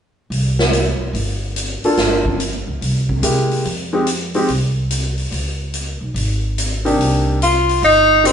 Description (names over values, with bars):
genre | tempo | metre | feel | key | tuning
jazz, small-group swing and bop | 144 BPM | 4/4 | swing 66% on 8ths | C minor | A4 = 440 Hz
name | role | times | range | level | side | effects
upright bass | bass | 0.3-8.3 s | G1 to C3 | -20 LUFS | equal | none
swinging big-band drum kit | drums | 0.3-8.3 s | hi-hat, kick drum, snare drum | -22 LUFS | equal | none
clear upright piano | accompaniment | 1.8-8.3 s | C3 to A4 | -18 LUFS | equal | none
clear tenor saxophone | melody | 7.4-8.3 s | C4 to F4 | -11 LUFS | left 1 dB | none
room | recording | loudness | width
wet large studio reverb, RT60 0.9 s | band playing live in one room, nothing above 10.6 kHz | -15 LUFS | side -8 dB against mid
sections
0.3-7.0 A section; 7.0-8.3 B section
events
none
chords
0.3 C5; 2.0 Gm7; 2.8 C7b13; 3.6 Fm9; 5.3 Db5; 7.0 Cm7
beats
| 0.30 0.72 1.14 1.55 | 1.97 2.39 2.81 3.23 | 3.64 4.06 4.48 4.90 | 5.32 5.73 6.15 6.57 | 6.99 7.40 7.82 8.24